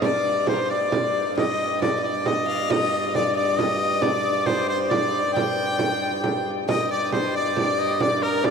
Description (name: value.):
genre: medieval dance.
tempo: 90 BPM (dotted quarters).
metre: 6/8.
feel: straight.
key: G minor.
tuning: A4 = 439 Hz.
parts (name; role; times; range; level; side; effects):
bright shawm; melody; 0.0-8.5 s; Bb4 to G5; -24 LUFS; equal; analog delay.
clear fiddle; second line; 0.0-8.5 s; Bb4 to G5; -26 LUFS; left 4 dB; none.
rich viola da gamba; drone; 0.0-8.5 s; G2; -30 LUFS; equal; none.
frame drum; percussion; 0.0-8.5 s; none; -26 LUFS; right 4 dB; none.
room: wet huge ambient reverb, RT60 8.9 s.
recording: dreamy mix soaked in reverb.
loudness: -20 LUFS.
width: side -6 dB against mid.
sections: 0.0-6.7 A section; 6.7-8.5 B section.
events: none.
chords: none.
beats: | 0.02 0.69 | 1.36 2.03 | 2.70 3.37 | 4.03 4.70 | 5.36 6.02 | 6.68 7.35 | 8.01.